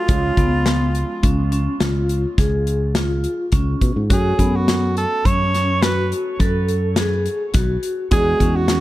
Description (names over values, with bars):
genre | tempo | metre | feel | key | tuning
progressive instrumental, band music in an uneven meter | 105 BPM | 7/4 | straight | F# minor | A4 = 441 Hz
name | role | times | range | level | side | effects
bright tenor saxophone | melody | 0.0-8.8 s | E#4 to C#5 | -24 LUFS | right 2 dB | tape echo
warm grand piano | accompaniment | 0.0-8.8 s | E#3 to F#4 | -30 LUFS | right 3 dB | none
vibraphone with medium hard mallets | arpeggios | 0.1-8.8 s | B3 to A4 | -24 LUFS | left 1 dB | tape echo
fretless electric bass | bass | 0.1-8.8 s | B1 to B2 | -20 LUFS | equal | none
modern studio drum kit | drums | 0.1-8.8 s | hi-hat, kick drum, snare drum | -20 LUFS | equal | none
room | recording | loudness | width
small room ambience | dark, warm production | -16 LUFS | side -15 dB against mid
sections
0.0-8.8 A section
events
none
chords
0.1 C#; 4.1 F#m; 8.1 E7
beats
| 0.09 0.66 1.23 1.81 2.38 2.95 3.53 | 4.10 4.67 5.25 5.82 6.39 6.97 7.54 | 8.11 8.69